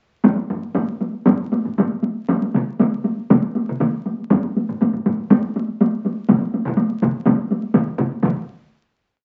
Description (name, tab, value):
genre	japanese traditional, taiko drum ensemble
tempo	120 BPM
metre	4/4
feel	straight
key	none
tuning	none
part	solo taiko drums	percussion	0.2-8.5 s	none	-20 LUFS	equal	none
part	taiko ensemble	percussion	0.2-8.4 s	none	-21 LUFS	equal	none
part	taiko ensemble	percussion	0.5-8.7 s	none	-32 LUFS	equal	none
part	taiko ensemble	percussion	2.5-8.7 s	none	-25 LUFS	equal	none
room	wet studio reverb, RT60 0.6 s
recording	very old 78 rpm record, vinyl crackle, nothing above 7.9 kHz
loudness	-20 LUFS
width	mono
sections	0.2-8.2 A section; 8.2-9.2 final hit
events	speeding up 0.2-9.2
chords	none